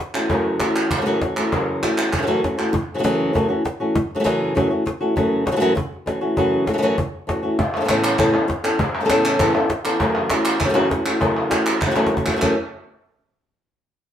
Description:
flamenco; 198 BPM; 4/4; straight; F# minor; A4 = 443 Hz
cajon; percussion; 0.0-12.5 s; -26 LUFS; equal
flamenco guitar; melody; 0.1-12.5 s; F#2 to A4; -19 LUFS; left 1 dB
palmas hand claps; percussion; 0.1-2.7, 7.6-12.5 s; -23 LUFS; right 1 dB
wet studio reverb, RT60 0.8 s; band playing live in one room; -17 LUFS; side -10 dB against mid
0.0-2.7 A section; 2.7-12.4 A section; 12.4-13.6 B section
drum fill 12.0-12.4
0.0 F#m7; 7.6 Aadd9; 10.0 F#m7; 12.4 N.C.

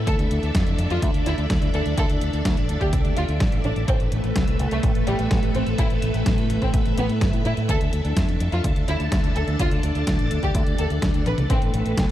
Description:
italo disco; 126 BPM; 4/4; straight; A4 = 440 Hz
string machine, full ensemble; sustained chords; 0.0-12.1 s; A3 to A5; -27 LUFS; equal; ensemble chorus
fingered electric bass with an envelope filter; bass; 0.0-12.1 s; G1 to A2; -24 LUFS; equal
warm studio violin section; melody; 0.1-11.6 s; G3 to B4; -30 LUFS; equal; vintage 12-bit sampler grit, diffuse ambient delay
clean 12-bit digital drum machine; drums; 0.1-12.1 s; hi-hat, snare drum, toms; -29 LUFS; equal; overdrive
electronic kick drum; drums; 0.1-12.1 s; -23 LUFS; equal; overdrive
light reverb; -19 LUFS; side -13 dB against mid
0.0-12.1 A section
drum fill 11.3
0.1 D5; 3.9 Asus2; 7.7 D5; 11.5 Amadd9

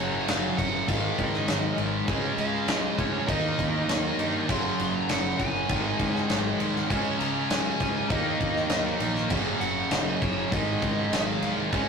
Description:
hard rock; 100 BPM; 4/4; straight; A4 = 439 Hz
dark smooth lead guitar; melody; 0.0-11.6 s; Db5 to C6; -33 LUFS; equal; overdrive
cranked stack guitar; riff; 0.0-11.9 s; Gb2 to Eb4; -34 LUFS; left 2 dB; overdrive
distorted electric guitar; riff; 0.0-11.9 s; Gb2 to Eb4; -30 LUFS; right 2 dB; distortion
heavy high-gain guitar; riff; 0.0-11.9 s; Gb2 to Eb4; -31 LUFS; left 1 dB; distortion
fuzz picked electric bass; bass; 0.0-11.9 s; Gb1 to G2; -34 LUFS; equal; overdrive
big rock drum kit; drums; 0.3-11.9 s; crash cymbal, kick drum, snare drum; -28 LUFS; equal
wet booth ambience, RT60 0.2 s; rough rehearsal-room recording, tube saturation; -24 LUFS; side -6 dB against mid
0.0-11.9 A section
0.0 Gb5; 0.9 Ab5; 2.1 Db5; 3.3 Eb; 4.5 Gb5; 5.7 Ab; 6.9 Db5; 8.1 Eb5; 9.3 Gb5; 10.5 Ab

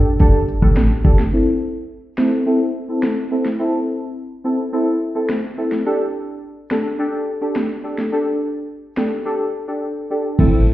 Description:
dancehall; 106 BPM; 4/4; straight; A minor; A4 = 440 Hz
deep mellow chord stab; accompaniment; 0.0-10.7 s; C4 to A4; -19 LUFS; equal; chorus, low-pass filter
warm 808-style bass; bass; 0.0-1.3, 10.4-10.7 s; G1 to A1; -16 LUFS; equal
afro-pop drum kit; drums; 0.2-10.7 s; crash cymbal, hi-hat, kick drum, rim click, snare drum; -18 LUFS; equal
light reverb, digital ambience; heard muffled through a wall, stone room reverb, EQ; -17 LUFS; side -15 dB against mid
0.0-1.3 A section; 1.3-10.4 B section
filter sweep on synth stab 1.3-10.4
0.0 Gsus2; 1.3 Am; 5.9 Gsus2

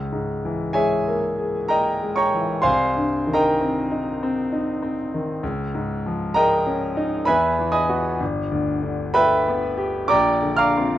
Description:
classical, impressionist solo piano; 64 BPM; 3/4; rubato; A4 = 440 Hz
clear concert grand piano; solo; 0.0-11.0 s; G1 to F6; -19 LUFS; equal
light reverb; worn, warbling old tape, cassette tape, warbly pitch drift; -19 LUFS; side -13 dB against mid
0.0-11.0 A section
0.0 Dbm6; 2.6 Cm7; 5.4 Dbadd9; 7.3 Eadd9; 8.2 Gadd9; 10.1 Bbadd9

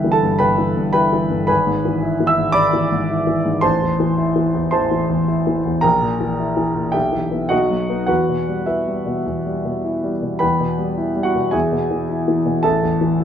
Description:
classical, virtuoso piano study; 102-114 BPM; 4/4; rubato; E minor; A4 = 440 Hz
warm grand piano; solo; 0.0-13.2 s; G1 to E6; -16 LUFS; equal
moderate large studio reverb, RT60 1.1 s; -16 LUFS; side -9 dB against mid
0.0-10.4 A section; 10.4-13.2 A section
0.0 Em/G; 1.5 E7/G#; 3.6 Am; 5.8 Edim/Bb; 6.9 Em/B; 7.5 B; 8.1 Em; 11.5 E; 12.6 A5

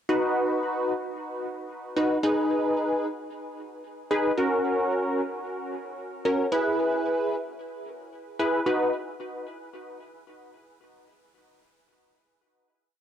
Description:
pop; 112 BPM; 4/4; straight; B major; A4 = 438 Hz
funky polysynth comp; solo; 0.1-8.9 s; C#4 to B4; -25 LUFS; equal; chorus, tape echo
wet spring reverb, RT60 1.2 s, digital ambience; home recording on cassette; -24 LUFS; side -9 dB against mid
0.1-8.7 verse; 8.7-10.8 final chord
0.1 B; 2.2 G#m; 4.4 F#; 6.5 E; 8.7 B

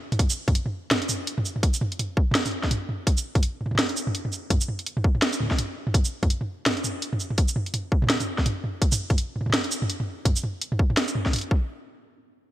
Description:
drum and bass; 167 BPM; 4/4; swing 58% on 16ths, half-time
drum and bass drum kit; drums; 0.1-11.4 s; hi-hat, shaker, snare drum, toms; -25 LUFS; right 1 dB
electronic kick drum; drums; 0.2-11.6 s; -22 LUFS; equal; overdrive
light reverb; bright 1980s-style digital production; -23 LUFS; side -14 dB against mid
0.0-11.7 A section
break 0.0

